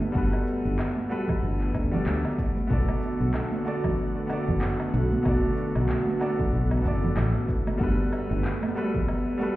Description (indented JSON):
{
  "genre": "sunset chillout",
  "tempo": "94 BPM",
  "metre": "4/4",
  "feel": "swing 57% on 16ths",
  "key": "G major",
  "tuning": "A4 = 440 Hz",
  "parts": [
    { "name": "bright concert grand piano", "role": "accompaniment", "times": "0.0-9.6 s", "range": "G3 to D5", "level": "-31 LUFS", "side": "equal", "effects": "auto-pan, digital delay" },
    { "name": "airy breathy pad", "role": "sustained chords", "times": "0.0-9.6 s", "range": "D3 to F#4", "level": "-30 LUFS", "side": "equal", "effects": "chorus" },
    { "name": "electronic cabasa, woodblock and handclaps", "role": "drums", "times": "0.0-9.6 s", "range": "none", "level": "-38 LUFS", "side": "equal", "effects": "overdrive" },
    { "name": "congas", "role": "percussion", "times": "0.0-9.5 s", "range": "none", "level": "-32 LUFS", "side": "right 2 dB", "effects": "none" },
    { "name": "fingered electric bass", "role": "bass", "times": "0.1-8.4 s", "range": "F#1 to D2", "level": "-26 LUFS", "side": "equal", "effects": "none" },
    { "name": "electronic kick drum", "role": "drums", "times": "0.1-9.1 s", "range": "none", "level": "-29 LUFS", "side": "equal", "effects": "overdrive" }
  ],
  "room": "moderate digital room reverb, RT60 1.1 s",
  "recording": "heard muffled through a wall, stone room reverb, EQ",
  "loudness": "-23 LUFS",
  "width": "side -16 dB against mid",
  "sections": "0.0-9.6 A section",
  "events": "none",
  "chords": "0.0 Gmaj9; 2.7 Bm7; 7.8 Gmaj9"
}